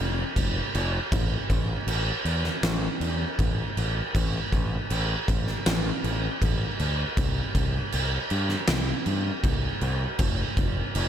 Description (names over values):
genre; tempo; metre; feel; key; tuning
post-rock; 79 BPM; 4/4; straight; A minor; A4 = 439 Hz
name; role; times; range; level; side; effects
growling fingered electric bass; bass; 0.0-11.1 s; F1 to G2; -28 LUFS; equal; overdrive
oversized low-tuned drum kit; drums; 0.4-11.1 s; crash cymbal, kick drum, snare drum; -26 LUFS; equal; none
room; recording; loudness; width
little or no reverb; none; -24 LUFS; side -10 dB against mid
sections
0.0-11.1 A section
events
none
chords
none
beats
0.36 | 1.11 1.87 2.63 3.39 | 4.14 4.90 5.66 6.41 | 7.17 7.93 8.68 9.44 | 10.20 10.95